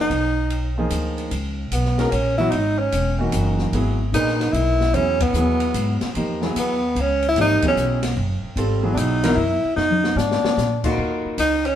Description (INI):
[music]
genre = modal jazz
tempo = 149 BPM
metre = 3/4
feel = swing 66% on 8ths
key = C# dorian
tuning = A4 = 439 Hz
[part]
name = mellow tenor saxophone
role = melody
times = 0.0-11.8 s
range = B3 to E4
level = -21 LUFS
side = equal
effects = none
[part]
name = warm grand piano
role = accompaniment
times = 0.0-11.4 s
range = A#2 to B4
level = -24 LUFS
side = equal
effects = none
[part]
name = upright bass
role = bass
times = 0.0-11.8 s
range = E1 to A#2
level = -23 LUFS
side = equal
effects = none
[part]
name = open jazz drum kit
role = drums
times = 0.1-11.7 s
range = crash cymbal, hi-hat, kick drum, ride cymbal, snare drum, toms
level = -28 LUFS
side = left 2 dB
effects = none
[sound]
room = wet stone room reverb, RT60 1.3 s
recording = band playing live in one room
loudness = -18 LUFS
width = side -10 dB against mid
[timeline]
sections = 0.0-1.3 A section; 1.3-11.0 B section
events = band accent 5.1, 7.6; drum fill 9.8-10.6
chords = 0.0 B; 1.3 C#m9 (rootless); 9.8 A#7; 11.0 Ebm9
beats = | 0.10 0.51 0.91 | 1.31 1.72 2.12 | 2.52 2.93 3.33 | 3.73 4.13 4.54 | 4.94 5.34 5.74 | 6.15 6.55 6.95 | 7.35 7.76 8.16 | 8.56 8.96 9.37 | 9.77 10.17 10.57 | 10.98 11.38